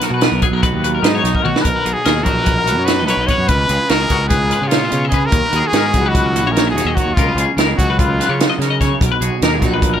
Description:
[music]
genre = math rock and midwest emo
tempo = 294 BPM (eighths)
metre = 9/8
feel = straight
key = unclear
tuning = A4 = 439 Hz
[part]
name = semi-hollow electric guitar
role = accompaniment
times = 0.0-10.0 s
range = G#2 to B4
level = -22 LUFS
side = right 6 dB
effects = wide subtle chorus
[part]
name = twelve-string electric guitar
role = arpeggios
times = 0.0-10.0 s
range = F#4 to D#5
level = -21 LUFS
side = left 8 dB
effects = tremolo
[part]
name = compact cocktail drum kit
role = drums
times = 0.0-9.9 s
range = hi-hat, kick drum, snare drum, toms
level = -18 LUFS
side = right 1 dB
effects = none
[part]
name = fuzz fingered electric bass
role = bass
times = 0.1-10.0 s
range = A#1 to C#3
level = -19 LUFS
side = equal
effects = overdrive
[part]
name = brilliant trumpet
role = melody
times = 1.0-8.6 s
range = D#4 to C#5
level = -19 LUFS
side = equal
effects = none
[sound]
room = little or no reverb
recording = none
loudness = -13 LUFS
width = side -9 dB against mid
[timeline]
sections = 0.0-1.7 A section; 1.7-10.0 B section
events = drum fill 1.3-1.7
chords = 0.0 Bmaj7; 3.5 C#7; 5.3 D#m7; 7.2 F#maj7/C#; 9.0 Bmaj7

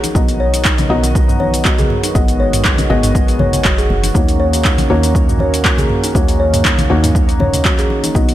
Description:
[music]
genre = afro house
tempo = 120 BPM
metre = 4/4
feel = swing 55% on 16ths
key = Eb minor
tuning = A4 = 440 Hz
[part]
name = warm analog pad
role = sustained chords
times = 0.0-8.3 s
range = Eb3 to Gb4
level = -22 LUFS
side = right 4 dB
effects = chorus, sidechain pumping
[part]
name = kalimba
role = arpeggios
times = 0.0-8.3 s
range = Db4 to Db5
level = -20 LUFS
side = left 1 dB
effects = sidechain pumping, ping-pong delay
[part]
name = felt-muted upright piano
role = stabs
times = 0.0-8.3 s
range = Bb3 to D#5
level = -21 LUFS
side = left 3 dB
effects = sidechain pumping, ping-pong delay
[part]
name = afro-pop drum kit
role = drums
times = 0.0-8.3 s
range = handclaps, hi-hat, shaker, toms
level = -19 LUFS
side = equal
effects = small room ambience
[part]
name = congas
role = percussion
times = 0.0-8.3 s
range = none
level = -22 LUFS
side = left 2 dB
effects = none
[part]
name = woody FM bass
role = bass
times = 0.2-8.3 s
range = Gb1 to Eb2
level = -19 LUFS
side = equal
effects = sidechain pumping
[part]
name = electronic kick drum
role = drums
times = 0.2-8.3 s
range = none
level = -16 LUFS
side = equal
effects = small room ambience
[sound]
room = digital ambience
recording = none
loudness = -11 LUFS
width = side -13 dB against mid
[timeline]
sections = 0.0-8.3 A section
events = none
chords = 0.1 B; 2.1 Abm7; 4.1 Ebm7

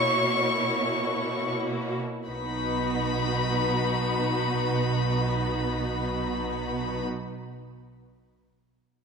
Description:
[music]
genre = classical, slow romantic movement for string orchestra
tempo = free time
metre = none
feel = none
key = B major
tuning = A4 = 440 Hz
[part]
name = rich chamber violin section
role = melody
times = 0.0-7.0 s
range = B5 to C#6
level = -30 LUFS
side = left 3 dB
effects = none
[part]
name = rich chamber violin section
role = second line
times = 0.0-7.0 s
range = F#4 to C#5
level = -31 LUFS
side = left 3 dB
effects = none
[part]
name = clear studio viola section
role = accompaniment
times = 0.0-7.0 s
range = A#3 to E4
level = -32 LUFS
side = right 1 dB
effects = none
[part]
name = warm chamber cello section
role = bass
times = 0.0-7.0 s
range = B2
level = -33 LUFS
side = right 3 dB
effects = none
[part]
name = rich chamber double bass section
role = bass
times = 2.3-7.0 s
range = B1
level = -32 LUFS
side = right 5 dB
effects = none
[sound]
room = moderate concert hall reverb, RT60 2.1 s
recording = none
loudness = -25 LUFS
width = side -5 dB against mid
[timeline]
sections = 0.0-2.3 A section; 2.3-6.3 B section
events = slowing down 0.0-2.3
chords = 0.0 F#7/B; 2.3 B

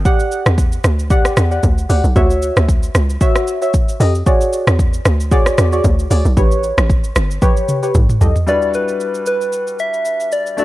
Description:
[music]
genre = amapiano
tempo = 114 BPM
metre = 4/4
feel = swing 55% on 16ths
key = E dorian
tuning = A4 = 439 Hz
[part]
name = hollow log drum bass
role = bass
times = 0.0-8.3 s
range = G1 to F2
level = -15 LUFS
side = equal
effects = none
[part]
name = deep mellow chord stab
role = stabs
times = 0.1-8.3 s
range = F#4 to F#5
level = -19 LUFS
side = equal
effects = chorus, tape echo
[part]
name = afro-pop drum kit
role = drums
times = 0.1-10.6 s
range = hi-hat, kick drum, rim click, shaker, toms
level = -16 LUFS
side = equal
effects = none
[part]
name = soft struck synth lead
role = melody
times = 8.5-10.6 s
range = B4 to E5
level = -16 LUFS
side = left 1 dB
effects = chorus, tape echo
[part]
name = clear grand piano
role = accompaniment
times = 8.5-10.6 s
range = G3 to E5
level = -24 LUFS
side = left 2 dB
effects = none
[sound]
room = little or no reverb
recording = dry, gritty hardware recording, cassette tape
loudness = -12 LUFS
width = side -16 dB against mid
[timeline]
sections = 0.0-8.5 A section; 8.5-10.6 B section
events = drop 0.0-8.5; drum fill 7.4-8.5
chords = 0.1 Em9; 2.2 Dmaj9; 3.7 F9; 4.3 E13; 6.4 A9; 7.9 Baug7; 8.5 Em9

